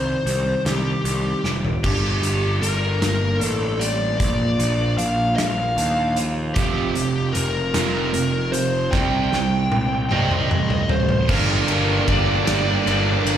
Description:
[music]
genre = quiet-loud alternative rock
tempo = 51 BPM (dotted quarters)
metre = 6/8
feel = straight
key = G minor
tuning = A4 = 441 Hz
[part]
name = bluesy overdriven lead guitar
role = melody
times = 0.0-13.4 s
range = G4 to G5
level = -24 LUFS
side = left 2 dB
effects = distortion, slapback echo
[part]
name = twelve-string electric guitar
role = arpeggios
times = 0.0-6.6 s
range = G2 to G4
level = -27 LUFS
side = right 1 dB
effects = ensemble chorus
[part]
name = fuzz picked electric bass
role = bass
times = 0.0-13.4 s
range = F1 to Eb2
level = -23 LUFS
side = equal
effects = overdrive
[part]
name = loose indie drum kit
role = drums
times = 0.3-13.4 s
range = crash cymbal, hi-hat, kick drum, ride cymbal, snare drum, toms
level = -24 LUFS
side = equal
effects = none
[part]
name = distorted electric guitar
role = riff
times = 6.6-13.4 s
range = F2 to D4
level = -23 LUFS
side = right 9 dB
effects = distortion
[part]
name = string machine, violas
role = sustained chords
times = 11.3-13.4 s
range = Bb4 to D6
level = -34 LUFS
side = left 1 dB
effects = none
[part]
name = fuzz guitar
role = riff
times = 11.3-13.4 s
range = G2 to G3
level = -29 LUFS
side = left 1 dB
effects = none
[part]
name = raw garage guitar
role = riff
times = 11.3-13.4 s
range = G2 to D4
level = -28 LUFS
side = left 12 dB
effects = overdrive, slapback echo
[sound]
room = light reverb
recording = live gig heard through the venue's PA, recital hall reverb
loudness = -18 LUFS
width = side -10 dB against mid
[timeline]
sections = 0.0-1.8 A section; 1.8-11.3 B section; 11.3-13.4 C section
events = drum fill 1.4-1.8, 8.9-11.3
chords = 0.0 Cm; 1.8 Gm; 4.2 Bb; 6.6 Fsus2; 8.9 Cm; 11.3 Gm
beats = 0.66 | 1.84 3.02 | 4.20 5.38 | 6.56 7.75 | 8.93 10.11 | 11.29 12.47

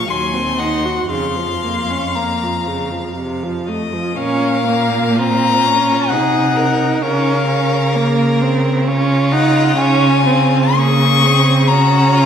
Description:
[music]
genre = classical, slow romantic movement for string quartet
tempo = 56-67 BPM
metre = 3/4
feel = rubato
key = Bb minor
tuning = A4 = 440 Hz
[part]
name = warm violin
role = melody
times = 0.0-12.3 s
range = Eb5 to Db6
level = -18 LUFS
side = left 6 dB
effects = none
[part]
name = clear violin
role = second line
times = 0.0-12.3 s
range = F4 to Ab5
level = -22 LUFS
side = left 2 dB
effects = none
[part]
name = rich viola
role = accompaniment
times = 0.0-12.3 s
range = C3 to Gb4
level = -18 LUFS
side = right 2 dB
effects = none
[part]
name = rich cello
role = bass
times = 0.0-12.3 s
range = Eb2 to Db3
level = -18 LUFS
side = right 2 dB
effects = none
[sound]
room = wet concert hall reverb, RT60 2.2 s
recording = recorded in a church or concert hall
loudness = -13 LUFS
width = side -8 dB against mid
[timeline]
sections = 0.0-4.2 A section; 4.2-12.3 B section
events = none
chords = 0.1 Cdim/Eb; 1.1 Bbm/F; 3.2 F; 4.2 Bbm; 7.0 Bbm/Db; 9.8 Db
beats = 0.10 | 1.11 2.16 3.18 | 4.17 5.18 6.11 | 7.02 7.95 8.87 | 9.77 10.76 11.69

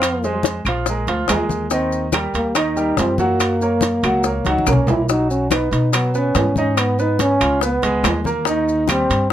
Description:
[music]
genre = Afro-Cuban jazz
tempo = 142 BPM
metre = 4/4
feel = straight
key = B major from 5.1 s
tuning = A4 = 442 Hz
[part]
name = dark trombone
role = melody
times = 0.0-9.3 s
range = Bb3 to Fb4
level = -20 LUFS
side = equal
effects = none
[part]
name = bright upright piano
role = accompaniment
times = 0.0-9.2 s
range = Eb3 to Gb5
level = -22 LUFS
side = right 2 dB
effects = none
[part]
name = upright bass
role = bass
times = 0.0-9.3 s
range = Bb1 to B2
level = -23 LUFS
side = left 1 dB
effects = none
[part]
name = bongos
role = percussion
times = 0.0-9.3 s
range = none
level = -24 LUFS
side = left 12 dB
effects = none
[part]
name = claves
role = percussion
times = 0.0-9.1 s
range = none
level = -29 LUFS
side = left 4 dB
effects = none
[part]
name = congas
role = percussion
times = 0.0-9.1 s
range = none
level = -25 LUFS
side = left 3 dB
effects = none
[part]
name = maracas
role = percussion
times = 0.0-9.3 s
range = none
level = -31 LUFS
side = left 4 dB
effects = none
[part]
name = timbales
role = percussion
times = 0.0-9.3 s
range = none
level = -23 LUFS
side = right 4 dB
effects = none
[sound]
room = light reverb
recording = none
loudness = -16 LUFS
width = side -11 dB against mid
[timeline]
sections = 0.0-5.1 A section; 5.1-9.3 B section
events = drum fill 4.5-5.1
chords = 0.0 Fm; 0.9 Bb7; 1.7 Eb; 3.4 Gb; 5.1 B6; 6.8 G#m; 7.6 C#sus2; 8.5 D#6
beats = | 0.02 0.44 0.86 1.29 | 1.71 2.13 2.56 2.98 | 3.40 3.83 4.25 4.67 | 5.09 5.51 5.94 6.36 | 6.78 7.20 7.63 8.05 | 8.47 8.89 9.32

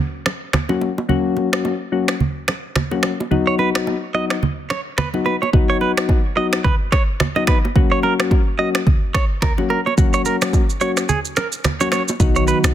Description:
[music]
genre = afrobeats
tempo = 108 BPM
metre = 4/4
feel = swing 58% on 16ths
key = B major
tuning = A4 = 440 Hz
[part]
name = afro-pop drum kit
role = drums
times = 0.3-12.7 s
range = finger snaps, kick drum, rim click, shaker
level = -19 LUFS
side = equal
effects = soft clipping on snare
[part]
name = bongos and congas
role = percussion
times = 0.3-12.7 s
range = none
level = -23 LUFS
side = right 3 dB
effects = none
[part]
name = soft electric-piano-like synth keys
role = accompaniment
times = 0.7-12.7 s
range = F#3 to F#4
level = -21 LUFS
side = left 5 dB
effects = chorus
[part]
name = direct-recorded clean electric guitar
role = riff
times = 3.5-12.6 s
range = G#4 to D#5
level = -22 LUFS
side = right 5 dB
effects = ping-pong delay
[part]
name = hollow soft pad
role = sustained chords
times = 12.2-12.7 s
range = D#3 to F#4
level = -22 LUFS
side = right 6 dB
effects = chorus
[part]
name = deep log drum bass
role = bass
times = 12.2-12.7 s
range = B1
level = -18 LUFS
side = equal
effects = none
[sound]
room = little or no reverb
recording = dense, heavily limited modern master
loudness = -16 LUFS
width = side -11 dB against mid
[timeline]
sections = 0.0-12.2 A section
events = break 11.1-12.2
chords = 0.0 F#; 3.3 B; 7.8 F#; 12.2 B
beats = 0.53 | 1.09 1.65 2.20 2.76 | 3.31 3.87 4.42 4.98 | 5.53 6.09 6.64 7.20 | 7.76 8.31 8.87 9.42 | 9.98 10.53 11.09 11.64 | 12.20

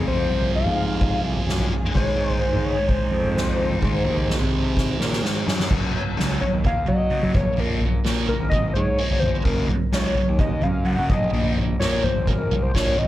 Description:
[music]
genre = psychedelic rock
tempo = 128 BPM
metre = 4/4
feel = straight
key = Bb minor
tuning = A4 = 440 Hz
[part]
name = hollow square lead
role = melody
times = 0.0-13.1 s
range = Bb4 to Gb5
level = -26 LUFS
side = left 2 dB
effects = chorus, analog delay
[part]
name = muted studio string section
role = sustained chords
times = 0.0-5.7 s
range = Ab3 to Ab4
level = -37 LUFS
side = right 3 dB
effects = none
[part]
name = thick fuzz guitar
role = riff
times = 0.0-13.0 s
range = F2 to Bb3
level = -26 LUFS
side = right 1 dB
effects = distortion, phaser
[part]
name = fuzz picked electric bass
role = bass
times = 0.0-13.1 s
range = Gb1 to Gb3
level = -26 LUFS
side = equal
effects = overdrive
[part]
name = soft-mallet drum kit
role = drums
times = 0.1-13.0 s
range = crash cymbal, kick drum, snare drum, toms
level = -23 LUFS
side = equal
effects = none
[sound]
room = light reverb, small room ambience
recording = none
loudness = -19 LUFS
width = side -14 dB against mid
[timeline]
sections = 0.0-5.7 A section; 5.7-13.1 B section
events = drum fill 4.8-5.7; analog synth lead solo 5.7-13.1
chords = 0.0 Fm; 2.0 Ab; 5.7 Gb5; 7.3 Bbm; 9.5 Gb5; 11.1 Bb5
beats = | 0.08 0.55 1.01 1.48 | 1.95 2.42 2.89 3.36 | 3.83 4.30 4.77 5.24 | 5.71 6.17 6.64 7.11 | 7.58 8.05 8.52 8.99 | 9.46 9.93 10.40 10.87 | 11.34 11.81 12.28 12.75

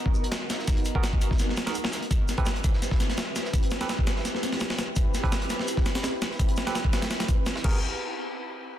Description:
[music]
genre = drum and bass, jungle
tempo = 168 BPM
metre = 4/4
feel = straight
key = unclear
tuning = A4 = 441 Hz
[part]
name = soft string machine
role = sustained chords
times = 0.0-7.8 s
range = B3 to B4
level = -34 LUFS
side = equal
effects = phaser, ensemble chorus
[part]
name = breakbeat sampler-style drum kit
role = drums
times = 0.1-7.7 s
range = crash cymbal, hi-hat, kick drum, snare drum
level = -25 LUFS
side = equal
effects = overdrive
[part]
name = crunchy breakbeat drum kit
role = drums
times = 0.1-7.6 s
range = hi-hat, shaker, snare drum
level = -39 LUFS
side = right 2 dB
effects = high-pass filter on hats, high-pass filter on snare, high-pass filter on perc, high-pass filter on room
[part]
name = barky tine electric piano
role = stabs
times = 1.0-7.8 s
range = B3 to B4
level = -36 LUFS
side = right 5 dB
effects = auto-pan, low-pass filter, dub echo
[sound]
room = light reverb, small room ambience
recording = dense, heavily limited modern master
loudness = -24 LUFS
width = side -12 dB against mid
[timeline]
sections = 0.0-7.8 A section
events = none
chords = 0.0 G#m9 (rootless); 2.1 Am9 (rootless); 7.6 G#m9; 7.8 N.C.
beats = 0.32 | 0.68 1.03 1.39 1.75 | 2.11 2.46 2.82 3.18 | 3.54 3.89 4.25 4.61 | 4.96 5.32 5.68 6.04 | 6.39 6.75 7.11 7.46

